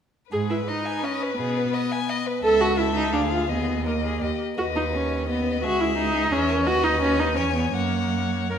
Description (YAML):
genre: quick classical-period movement for string quartet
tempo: 157-177 BPM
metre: 3/4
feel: rubato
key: G# minor, B major from 4.6 s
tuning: A4 = 440 Hz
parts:
  - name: rich violin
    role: melody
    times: 0.3-8.6 s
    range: B4 to G#5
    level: -30 LUFS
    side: left 10 dB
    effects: none
  - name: rich violin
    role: second line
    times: 0.3-8.6 s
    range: G4 to G#5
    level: -30 LUFS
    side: left 2 dB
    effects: none
  - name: warm viola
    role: accompaniment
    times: 0.3-8.6 s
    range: A#3 to A#4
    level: -24 LUFS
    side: right 1 dB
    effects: none
  - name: warm cello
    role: bass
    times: 0.3-8.6 s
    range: C#2 to B2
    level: -28 LUFS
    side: right 3 dB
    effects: none
room: wet recital hall reverb, RT60 1.5 s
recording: none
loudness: -21 LUFS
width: side -8 dB against mid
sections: 0.3-8.6 A section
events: none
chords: 0.3 G#m; 1.4 G#m/B; 2.4 A/C#; 3.1 Ddim; 3.5 D#sus4; 4.2 D#; 4.6 B/D#; 5.6 C#m; 6.7 B/D#; 7.4 C#m/E; 7.7 F#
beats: | 0.32 0.68 1.04 | 1.39 1.74 2.09 | 2.43 2.78 3.13 | 3.49 3.86 4.22 | 4.59 4.94 5.29 | 5.64 5.98 6.32 | 6.66 7.01 7.37 | 7.74 8.12 8.50